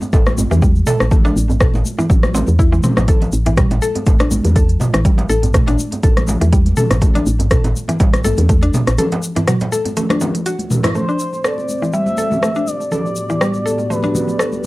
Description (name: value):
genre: afro house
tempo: 122 BPM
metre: 4/4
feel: swing 55% on 16ths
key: A dorian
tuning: A4 = 440 Hz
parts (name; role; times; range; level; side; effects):
- congas; percussion; 0.0-14.7 s; none; -22 LUFS; left 1 dB; none
- djembe; percussion; 0.0-10.9 s; none; -24 LUFS; right 2 dB; none
- egg shaker; percussion; 0.0-14.7 s; none; -31 LUFS; left 3 dB; none
- mallet-like synth pluck; arpeggios; 0.1-14.5 s; E3 to A4; -21 LUFS; equal; chorus, sidechain pumping, cassette tape, tape echo
- woody FM bass; bass; 0.1-9.0 s; A1 to E2; -17 LUFS; equal; tube saturation, sidechain pumping
- electronic kick drum; drums; 0.1-8.6 s; none; -14 LUFS; equal; none
- deep house drum kit; drums; 0.3-14.5 s; hi-hat, rim click, toms; -19 LUFS; equal; none
- expressive synth lead; melody; 11.0-14.6 s; B4 to E5; -22 LUFS; equal; chorus
- dark analog pad; sustained chords; 11.4-14.7 s; A2 to D5; -24 LUFS; equal; chorus, sidechain pumping, cassette tape
room: light reverb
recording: home recording on cassette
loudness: -13 LUFS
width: side -20 dB against mid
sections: 0.0-11.0 A section; 11.0-14.7 B section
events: break 9.0-11.0; band accent 10.8; filter sweep on synth arpeggio sound 11.0-14.7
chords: 0.0 A7(no3); 1.1 D9/A (rootless); 3.1 A7sus4; 9.0 Dadd9 (rootless); 11.0 Am7; 12.9 Gmaj7/A